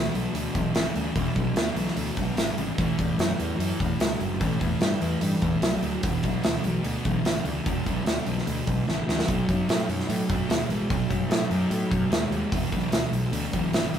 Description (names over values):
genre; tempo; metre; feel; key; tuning
blues rock power trio and southern rock; 148 BPM; 4/4; straight; E mixolydian; A4 = 440 Hz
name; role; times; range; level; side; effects
thick fuzz guitar; riff; 0.0-14.0 s; E2 to G#3; -28 LUFS; equal; distortion
fuzz fingered electric bass; bass; 0.0-14.0 s; E1 to A2; -30 LUFS; equal; overdrive
big rock drum kit; drums; 0.2-14.0 s; hi-hat, kick drum, snare drum; -27 LUFS; right 1 dB; none
room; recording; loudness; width
light reverb; rough rehearsal-room recording; -23 LUFS; side -9 dB against mid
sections
0.0-14.0 A section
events
drum fill 8.9-9.3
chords
0.0 E; 2.8 A5; 4.4 A7(no3); 6.0 E5; 9.3 B; 12.5 E5